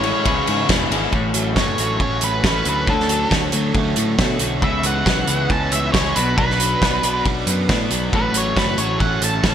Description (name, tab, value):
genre	indie rock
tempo	137 BPM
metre	4/4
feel	straight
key	A major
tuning	A4 = 440 Hz
part	octave-fuzz lead guitar	melody	0.0-9.5 s	A4 to A5	-23 LUFS	equal	distortion
part	sweeping resonant pad	sustained chords	0.0-9.5 s	G#4 to D6	-32 LUFS	left 2 dB	none
part	biting overdriven guitar	riff	0.0-9.5 s	A2 to G#4	-24 LUFS	right 6 dB	lush chorus
part	twelve-string electric guitar	riff	0.0-9.5 s	E2 to F#4	-25 LUFS	left 7 dB	none
part	growling picked electric bass	bass	0.0-9.5 s	E1 to B2	-24 LUFS	equal	overdrive
part	loose indie drum kit	drums	0.0-9.5 s	hi-hat, kick drum, ride cymbal, snare drum	-20 LUFS	equal	gated reverb
room	light reverb, small room ambience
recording	bright 1980s-style digital production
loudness	-16 LUFS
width	side -9 dB against mid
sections	0.0-1.1 A section; 1.1-9.5 B section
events	lead electric guitar solo 1.1-9.5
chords	0.3 C#m7; 0.7 E7; 1.1 A6; 2.9 Dmaj7; 4.6 C#m7; 6.2 Bm; 8.1 A6